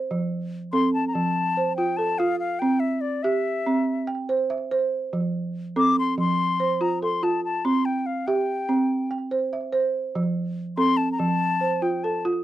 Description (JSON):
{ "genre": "west african traditional, West African string and xylophone music", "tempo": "96 BPM (dotted quarters)", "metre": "12/8", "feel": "straight", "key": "F major", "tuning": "A4 = 440 Hz", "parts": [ { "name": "balafon", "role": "arpeggios", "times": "0.0-12.4 s", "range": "F3 to G5", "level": "-23 LUFS", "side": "right 2 dB", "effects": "slapback echo" }, { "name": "concert flute", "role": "melody", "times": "0.7-12.2 s", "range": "D5 to D6", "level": "-25 LUFS", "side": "left 4 dB", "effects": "none" } ], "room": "light reverb", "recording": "dry, close 1970s-style studio recording", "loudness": "-22 LUFS", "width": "side -13 dB against mid", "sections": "0.1-12.4 A section", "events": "none", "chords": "0.1 F; 2.6 C; 5.1 F; 7.6 C; 10.2 F", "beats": "| 0.11 0.74 1.36 1.99 | 2.62 3.25 3.87 4.50 | 5.13 5.76 6.38 7.01 | 7.64 8.27 8.90 9.53 | 10.15 10.78 11.41 12.04" }